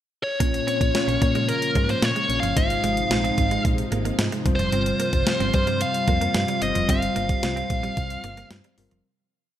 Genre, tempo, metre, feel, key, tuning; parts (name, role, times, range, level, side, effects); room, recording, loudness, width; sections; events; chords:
1980s-style pop; 111 BPM; 4/4; straight; A4 = 440 Hz
high-gain lead guitar; melody; 0.2-8.5 s; Bb4 to F5; -25 LUFS; equal; distortion, digital delay
mellow tine electric piano; accompaniment; 0.4-9.1 s; G2 to Db5; -28 LUFS; left 4 dB; wide subtle chorus
phased analog pad; sustained chords; 0.4-9.0 s; C3 to F4; -32 LUFS; right 2 dB; phaser, chorus
direct-recorded clean electric guitar; riff; 0.4-9.0 s; F3 to Db4; -33 LUFS; right 5 dB; lush chorus
solid FM bass; bass; 0.4-9.0 s; F1 to Bb2; -28 LUFS; equal
clean 12-bit digital drum machine; drums; 0.4-9.0 s; hi-hat, kick drum, snare drum; -24 LUFS; equal
moderate plate reverb, RT60 1.7 s; bright 1980s-style digital production; -20 LUFS; side -11 dB against mid
0.0-0.4 pickup bar; 0.4-9.1 pre-chorus
fade-out 6.9-9.1
0.4 Bbm; 2.6 Fm7/Ab; 4.5 Csus4